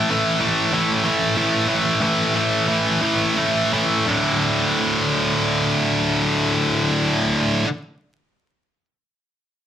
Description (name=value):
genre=rock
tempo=83-97 BPM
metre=4/4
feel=straight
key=unclear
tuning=A4 = 440 Hz
part: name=heavy high-gain guitar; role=solo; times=0.0-7.7 s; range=D2 to A3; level=-17 LUFS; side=equal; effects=distortion
room=moderate studio reverb, RT60 0.6 s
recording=dense, heavily limited modern master, vinyl crackle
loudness=-17 LUFS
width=side -10 dB against mid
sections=0.0-4.1 A section; 4.1-7.0 B section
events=slowing down 0.0-4.1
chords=0.0 A5; 4.1 D5